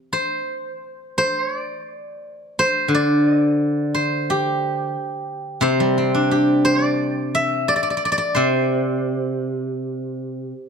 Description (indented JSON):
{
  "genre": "chinese traditional, Chinese solo plucked strings",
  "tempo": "87 BPM",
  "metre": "4/4",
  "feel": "rubato",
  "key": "C gong mode",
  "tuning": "A4 = 440 Hz",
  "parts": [
    { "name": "steel-string zither", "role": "solo", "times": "0.1-10.7 s", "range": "C3 to E5", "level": "-19 LUFS", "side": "equal", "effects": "none" }
  ],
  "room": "light reverb",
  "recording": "close, detailed microphones",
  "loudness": "-18 LUFS",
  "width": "side -6 dB against mid",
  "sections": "0.1-10.7 A section",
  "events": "none",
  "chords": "none"
}